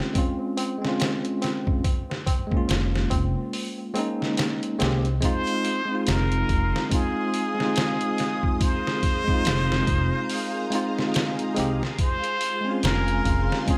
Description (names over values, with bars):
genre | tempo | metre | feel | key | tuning
trip hop | 71 BPM | 4/4 | swing 59% on 16ths | F minor | A4 = 441 Hz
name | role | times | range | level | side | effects
bell-like tine electric piano | accompaniment | 0.0-13.8 s | Ab3 to G4 | -29 LUFS | equal | tremolo
trip hop sampler-style drum kit | drums | 0.0-13.8 s | hi-hat, kick drum, snare drum | -29 LUFS | equal | none
tabla | percussion | 0.2-5.2 s | none | -39 LUFS | equal | none
upright bass | bass | 2.7-13.5 s | F1 to C2 | -28 LUFS | equal | tube saturation
trumpet with plunger mute | melody | 5.2-13.8 s | Ab4 to C5 | -30 LUFS | equal | none
string machine, cellos | sustained chords | 5.2-13.8 s | Ab4 to Eb6 | -37 LUFS | equal | phaser, ensemble chorus
room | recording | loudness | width
light reverb, small room ambience | none | -25 LUFS | mono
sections
0.0-5.2 A section; 5.2-13.8 B section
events
none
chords
0.0 Dbmaj7; 1.8 Bbm7/F; 5.2 Fm7; 12.0 Dbmaj7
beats
0.15 1.00 | 1.84 2.69 3.54 4.38 | 5.22 6.07 6.92 7.76 | 8.61 9.45 10.30 11.14 | 11.99 12.83 13.68